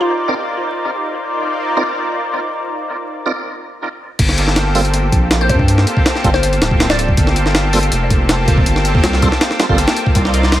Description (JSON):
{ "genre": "drum and bass, jungle", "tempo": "161 BPM", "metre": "4/4", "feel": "straight", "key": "G minor", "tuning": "A4 = 440 Hz", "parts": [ { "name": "glassy wavetable pluck", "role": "melody", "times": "0.0-0.5, 5.4-7.3 s", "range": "F4 to D5", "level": "-24 LUFS", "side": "left 1 dB", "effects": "chorus, dub echo" }, { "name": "lush unison pad", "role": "sustained chords", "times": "0.0-10.6 s", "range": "Bb3 to D5", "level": "-19 LUFS", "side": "equal", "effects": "chorus" }, { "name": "tonewheel organ", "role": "stabs", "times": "0.3-9.8 s", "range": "G3 to D5", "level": "-23 LUFS", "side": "right 2 dB", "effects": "chorus vibrato, slow rotary speaker, vintage 12-bit sampler grit, low-pass filter, dub echo" }, { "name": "saturated sub bass", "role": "bass", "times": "4.2-10.6 s", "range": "D1 to G2", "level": "-16 LUFS", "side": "equal", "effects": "none" }, { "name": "jungle sampler-style drum kit", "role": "drums", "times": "4.2-10.6 s", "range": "crash cymbal, hi-hat, kick drum, snare drum", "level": "-15 LUFS", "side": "equal", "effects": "studio reverb" } ], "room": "moderate echo chamber reverb, RT60 1.5 s", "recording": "echo-heavy mix, vinyl crackle", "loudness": "-13 LUFS", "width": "side -13 dB against mid", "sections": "0.0-4.2 A section; 4.2-10.6 B section", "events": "filter sweep on analog synth pad 0.0-4.2; break 3.4-4.2; drop 4.2-10.6", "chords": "0.0 Cm11; 4.2 Gm11" }